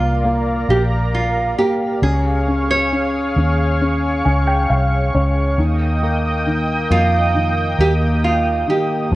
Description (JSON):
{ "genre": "pop", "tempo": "67 BPM", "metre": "4/4", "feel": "straight", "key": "unclear", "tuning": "A4 = 440 Hz", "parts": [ { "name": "nylon-string guitar", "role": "melody", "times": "0.0-9.1 s", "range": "F4 to Db5", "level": "-20 LUFS", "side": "right 2 dB", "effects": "none" }, { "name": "warm concert grand piano", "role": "accompaniment", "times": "0.0-9.2 s", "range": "Eb3 to Ab5", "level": "-22 LUFS", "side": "left 1 dB", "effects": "none" }, { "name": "lush unison pad", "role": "sustained chords", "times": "0.0-9.2 s", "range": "Bb3 to Eb6", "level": "-23 LUFS", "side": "equal", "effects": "chorus" }, { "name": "vintage muted fingered electric bass", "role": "bass", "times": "0.0-9.2 s", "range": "Bb1 to F2", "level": "-18 LUFS", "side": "equal", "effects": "none" } ], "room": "light reverb", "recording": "worn, warbling old tape, cassette tape, warbly pitch drift", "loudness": "-15 LUFS", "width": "side -17 dB against mid", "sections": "0.0-9.2 A section", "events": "grand piano fill 3.8-5.6", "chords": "0.0 Bbadd9; 2.0 Db; 5.6 Eb", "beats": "0.24 1.13 | 2.02 2.92 3.81 4.70 | 5.58 6.46 7.34 8.23 | 9.12" }